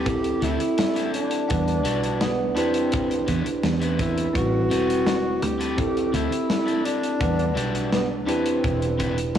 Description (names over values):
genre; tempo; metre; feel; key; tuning
vaporwave; 84 BPM; 4/4; straight; unclear; A4 = 440 Hz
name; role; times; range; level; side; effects
breathy tenor saxophone; melody; 0.0-9.3 s; B3 to G4; -27 LUFS; equal; vintage 12-bit sampler grit, tape echo
bell-like tine electric piano; accompaniment; 0.0-9.4 s; G3 to F#5; -26 LUFS; right 1 dB; wide subtle chorus
electric guitar at the edge of break-up; riff; 0.0-9.4 s; C4 to D5; -32 LUFS; left 4 dB; wide subtle chorus, vintage 12-bit sampler grit
fingered electric bass; bass; 0.0-9.4 s; E1 to E2; -28 LUFS; right 1 dB; none
big rock drum kit; drums; 0.1-9.4 s; hi-hat, snare drum; -30 LUFS; left 1 dB; none
kick drum; drums; 0.1-9.1 s; none; -30 LUFS; equal; none
room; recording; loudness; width
studio ambience; dry, gritty hardware recording, cassette tape; -21 LUFS; side -9 dB against mid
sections
0.0-9.4 A section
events
none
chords
0.1 D9sus4; 1.5 Em9; 2.6 Cmaj7/E; 4.4 Am9; 5.8 D9sus4; 7.2 Em9; 8.3 Cmaj7/E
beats
0.07 0.79 | 1.50 2.21 2.93 3.64 | 4.36 5.07 5.79 6.50 | 7.21 7.93 8.64 9.36